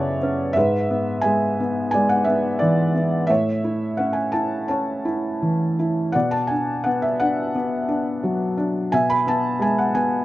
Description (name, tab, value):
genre	classical, lyrical solo piano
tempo	87 BPM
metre	4/4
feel	rubato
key	unclear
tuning	A4 = 440 Hz
part	felt-muted upright piano	solo	0.0-10.2 s	F#2 to B5	-19 LUFS	equal	none
room	little or no reverb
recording	close, detailed microphones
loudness	-19 LUFS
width	side -15 dB against mid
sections	0.0-10.2 A section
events	none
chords	0.0 F#7sus4; 0.6 E7/G#; 3.3 A; 6.1 Bm; 8.9 Eadd9/B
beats	| 0.56 1.25 1.94 2.61 | 3.30 3.99 4.69 5.42 | 6.14 6.86 7.55 8.24 | 8.92 9.61